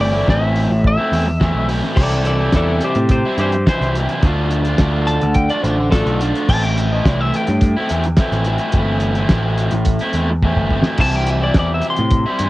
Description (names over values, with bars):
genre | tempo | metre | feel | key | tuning
indie rock | 106 BPM | 4/4 | straight | A minor | A4 = 437 Hz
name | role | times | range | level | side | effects
lightly driven lead guitar | melody | 0.0-12.5 s | G4 to C6 | -22 LUFS | left 1 dB | none
raw garage guitar | riff | 0.0-12.5 s | A2 to F4 | -19 LUFS | equal | overdrive, cassette tape
growling picked electric bass | bass | 0.0-12.5 s | G1 to A2 | -19 LUFS | equal | overdrive
cloth-damped thuddy drum kit | drums | 0.0-12.5 s | crash cymbal, hi-hat, kick drum, snare drum | -17 LUFS | equal | none
room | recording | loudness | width
little or no reverb | home recording on cassette | -14 LUFS | side -18 dB against mid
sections
0.0-2.0 A section; 2.0-12.5 B section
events
lead electric guitar solo 2.0-12.5; drum fill 10.4-11.0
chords
0.0 Am; 2.0 C; 4.2 Dm; 6.5 Am7; 11.0 C